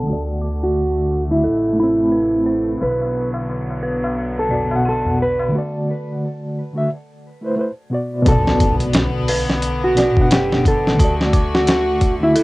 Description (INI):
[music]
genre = trip hop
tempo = 88 BPM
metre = 4/4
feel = swing 58% on 16ths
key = B phrygian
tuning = A4 = 440 Hz
[part]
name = mellow electric guitar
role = melody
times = 0.0-12.4 s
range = E4 to B4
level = -19 LUFS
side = right 1 dB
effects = cassette tape, tape echo
[part]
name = mellow reed electric piano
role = accompaniment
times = 0.0-12.3 s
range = B2 to B5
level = -21 LUFS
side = equal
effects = fast tremolo, vintage 12-bit sampler grit, low-pass filter, cassette tape, tape echo
[part]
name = bright chamber string section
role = sustained chords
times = 0.0-12.4 s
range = C3 to F#5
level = -27 LUFS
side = left 1 dB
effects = low-pass filter, cassette tape
[part]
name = dark detuned synth bell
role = arpeggios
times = 0.0-12.4 s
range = A4 to D6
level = -29 LUFS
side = right 1 dB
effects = chorus, low-pass filter, cassette tape, analog delay
[part]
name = upright bass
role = bass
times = 0.0-12.3 s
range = F#1 to D2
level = -25 LUFS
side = equal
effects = tube saturation
[part]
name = tabla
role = percussion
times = 2.8-5.5 s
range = none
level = -29 LUFS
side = left 1 dB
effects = none
[part]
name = dusty soul sampler-style drum kit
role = drums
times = 8.3-12.4 s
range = hi-hat, kick drum, snare drum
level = -17 LUFS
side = equal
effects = studio reverb
[part]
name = impact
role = sound effects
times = 8.3-11.0 s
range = none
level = -27 LUFS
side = equal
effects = none
[sound]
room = light reverb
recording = home recording on cassette, low-pass filter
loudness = -16 LUFS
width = side -20 dB against mid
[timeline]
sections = 0.0-8.3 A section; 8.3-12.4 B section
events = filter sweep on reed electric piano 0.0-8.3; filter sweep on string section 0.0-8.3; filter sweep on synth bell 0.0-8.3; filter sweep 0.0-8.3; break 5.5-8.3; impact 8.3-11.0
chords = 0.1 D; 1.4 Amadd9; 2.8 Bm; 5.5 D; 6.9 Amadd9; 8.3 Bm; 11.0 D